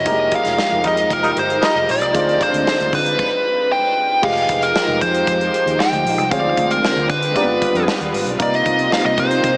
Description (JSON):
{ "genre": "polished 1980s jazz-funk pop", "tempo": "115 BPM", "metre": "4/4", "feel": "straight", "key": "unclear", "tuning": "A4 = 442 Hz", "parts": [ { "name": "nasal lead guitar with a parked wah", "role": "melody", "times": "0.0-9.6 s", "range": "Bb4 to G5", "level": "-17 LUFS", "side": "equal", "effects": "overdrive" }, { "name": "warm grand piano", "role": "accompaniment", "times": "0.0-9.6 s", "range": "G3 to Eb5", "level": "-23 LUFS", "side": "equal", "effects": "wide subtle chorus" }, { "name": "soft string machine", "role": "sustained chords", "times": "0.0-9.6 s", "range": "C3 to B4", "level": "-23 LUFS", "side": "equal", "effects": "ensemble chorus" }, { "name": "vintage muted fingered electric bass", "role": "bass", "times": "0.0-9.6 s", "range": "F1 to D3", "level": "-27 LUFS", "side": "equal", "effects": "none" }, { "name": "modern studio drum kit", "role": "drums", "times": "0.1-9.6 s", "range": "crash cymbal, hi-hat, kick drum, snare drum", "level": "-25 LUFS", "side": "equal", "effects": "none" }, { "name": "mellow horn section", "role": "second line", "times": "0.8-1.8 s", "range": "G3 to Bb4", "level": "-25 LUFS", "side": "equal", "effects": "none" } ], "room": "wet huge ambient reverb, RT60 7.6 s", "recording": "dreamy mix soaked in reverb, small speaker sound", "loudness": "-14 LUFS", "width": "side -38 dB against mid", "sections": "0.0-4.2 A section; 4.2-9.6 B section", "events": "none", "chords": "0.1 Fm11; 2.1 Dm7b5; 3.2 N.C.; 4.2 Fm9; 6.3 Dm7b5; 7.4 G7; 8.4 Cm7" }